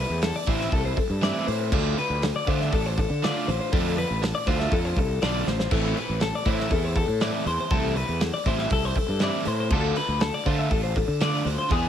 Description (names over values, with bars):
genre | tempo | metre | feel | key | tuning
math rock and midwest emo | 120 BPM | 4/4 | straight | unclear | A4 = 440 Hz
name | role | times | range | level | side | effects
twelve-string electric guitar | arpeggios | 0.0-11.9 s | G#4 to E5 | -28 LUFS | left 6 dB | none
fuzz fingered electric bass | bass | 0.0-11.9 s | A1 to D3 | -27 LUFS | equal | overdrive
overdriven electric guitar | riff | 0.2-11.9 s | D3 to G#4 | -30 LUFS | right 3 dB | tape echo
loose indie drum kit | drums | 0.2-11.8 s | crash cymbal, hi-hat, kick drum, snare drum | -28 LUFS | right 1 dB | tape echo
room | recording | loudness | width
small room ambience | echo-heavy mix | -22 LUFS | side -9 dB against mid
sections
0.0-11.9 A section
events
drum fill 5.5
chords
0.0 Am9; 1.7 Dm7; 5.7 Amadd9; 9.7 Dm7